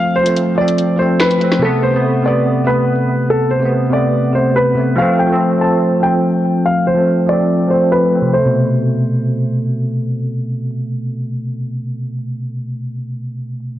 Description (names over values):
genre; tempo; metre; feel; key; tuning
hip hop, drill; 143 BPM; 4/4; half-time; A minor; A4 = 441 Hz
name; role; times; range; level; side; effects
dark concert grand piano; melody; 0.0-9.6 s; A4 to A5; -17 LUFS; equal; low-pass filter, tape echo
bell-like tine electric piano; accompaniment; 0.0-13.8 s; B2 to C4; -15 LUFS; equal; ensemble chorus, low-pass filter
drill drum kit; drums; 0.3-1.6 s; finger snaps, hi-hat, snare drum; -20 LUFS; equal; overdrive
room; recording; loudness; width
light reverb, digital ambience; dark, warm production, vinyl crackle, low-pass filter; -13 LUFS; side -13 dB against mid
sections
0.0-8.3 A section; 8.3-11.7 B section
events
break 0.0-1.6; filter sweep 0.0-8.3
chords
0.0 F; 1.6 Amadd9; 5.0 F; 8.3 Amadd9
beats
0.36 0.78 1.20 | 1.62 2.04 2.46 2.88 | 3.30 3.72 4.14 4.56 | 4.98 5.40 5.82 6.24 | 6.66 7.08 7.50 7.92 | 8.34 8.76 9.17 9.59 | 10.01 10.43 10.85 11.27